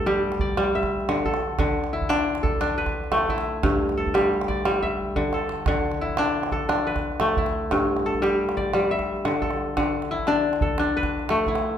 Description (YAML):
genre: west african traditional, West African string and xylophone music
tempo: 118 BPM (dotted quarters)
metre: 12/8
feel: straight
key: unclear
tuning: A4 = 443 Hz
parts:
  - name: kora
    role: arpeggios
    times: 0.0-11.8 s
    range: G2 to E5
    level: -22 LUFS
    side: left 2 dB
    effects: none
  - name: calabash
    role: percussion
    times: 0.1-11.6 s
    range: none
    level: -27 LUFS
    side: right 3 dB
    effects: none
room: wet recital hall reverb, RT60 1.3 s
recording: minimal, uncompressed stereo recording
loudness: -21 LUFS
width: side -9 dB against mid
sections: 0.0-11.8 A section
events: drum fill 4.8-5.7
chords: 0.0 G5; 1.6 D5; 3.6 G5; 5.7 D5; 7.7 G5; 9.8 D5